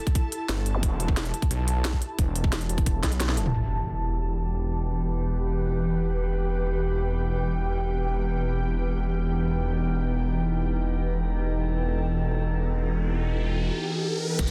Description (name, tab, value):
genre	dark technical drum and bass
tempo	free time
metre	none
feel	none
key	E harmonic minor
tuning	A4 = 440 Hz
part	ethereal airy pad	texture	0.0-13.7 s	E3 to A5	-34 LUFS	equal	ensemble chorus, built-in reverb, phaser, sidechain pumping
part	drum and bass drum kit	drums	0.1-3.5, 14.4-14.5 s	crash cymbal, hi-hat, snare drum, toms	-32 LUFS	equal	studio ambience
part	electronic kick drum	drums	0.1-3.1, 14.4-14.5 s	none	-27 LUFS	equal	studio ambience
part	detuned saw bass	bass	0.5-14.5 s	E1 to B1	-29 LUFS	equal	chorus, sidechain pumping
part	zap, impact and riser	sound effects	0.7-0.8, 3.5-4.9, 12.7-14.5 s	none	-35 LUFS	equal	none
part	metallic inharmonic drone	sustained chords	4.0-14.5 s	E3 to G4	-35 LUFS	equal	chorus, built-in reverb, sidechain pumping
room	little or no reverb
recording	dense, heavily limited modern master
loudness	-27 LUFS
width	mono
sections	0.0-3.5 A section; 3.5-14.4 B section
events	drum fill 3.0-3.5; impact 3.5-4.9; riser 12.7-14.4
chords	0.0 Em